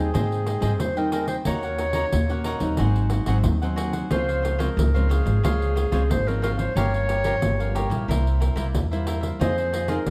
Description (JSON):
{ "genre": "samba and choro", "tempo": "91 BPM", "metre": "4/4", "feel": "straight", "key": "Ab major", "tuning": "A4 = 440 Hz", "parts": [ { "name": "clear clarinet", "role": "second line", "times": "0.0-10.1 s", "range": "Ab4 to Db5", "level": "-30 LUFS", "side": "equal", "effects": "none" }, { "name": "cavaquinho", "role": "accompaniment", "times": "0.0-10.0 s", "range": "Eb4 to G5", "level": "-34 LUFS", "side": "equal", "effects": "none" }, { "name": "nylon-string guitar", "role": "accompaniment", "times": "0.0-10.1 s", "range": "G2 to Ab4", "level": "-32 LUFS", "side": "equal", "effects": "none" }, { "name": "upright bass", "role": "bass", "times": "0.0-10.1 s", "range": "G1 to Ab2", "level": "-26 LUFS", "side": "equal", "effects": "none" }, { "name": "pandeiro", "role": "percussion", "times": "0.1-10.1 s", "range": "none", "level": "-32 LUFS", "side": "equal", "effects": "none" } ], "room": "light reverb", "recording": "close, detailed microphones", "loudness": "-23 LUFS", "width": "mono", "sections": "0.0-10.1 A section", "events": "clarinet solo 0.0-10.1", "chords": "0.0 Abmaj7; 1.5 Ebm7; 2.8 Ab7; 4.1 Dbmaj7; 6.8 Gm7b5; 8.1 C7; 9.4 Fm7", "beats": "0.15 0.81 | 1.47 2.13 2.79 3.46 | 4.12 4.78 5.44 6.10 | 6.76 7.42 8.08 8.74 | 9.41 10.07" }